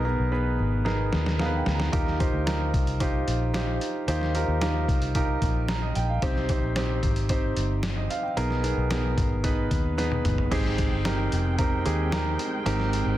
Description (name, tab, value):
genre	piano-driven pop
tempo	112 BPM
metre	4/4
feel	straight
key	unclear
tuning	A4 = 439 Hz
part	clear grand piano	accompaniment	0.0-13.2 s	Ab2 to Bb5	-28 LUFS	right 2 dB	none
part	vintage muted fingered electric bass	bass	0.0-13.2 s	F1 to Eb2	-27 LUFS	left 1 dB	none
part	trip hop sampler-style drum kit	drums	0.9-13.1 s	crash cymbal, hi-hat, kick drum, snare drum, toms	-28 LUFS	left 1 dB	none
part	muted studio string section	sustained chords	10.5-13.2 s	Ab3 to G5	-36 LUFS	equal	none
room	light reverb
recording	dense, heavily limited modern master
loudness	-23 LUFS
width	side -14 dB against mid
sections	0.0-10.5 A section; 10.5-13.2 B section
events	drum fill 0.9-1.9, 10.0-10.5; grand piano fill 1.1-1.9, 5.4-6.2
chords	0.0 Abmadd9; 1.9 Ebadd9; 6.2 Cm; 8.4 Abmadd9; 10.5 Abmaj7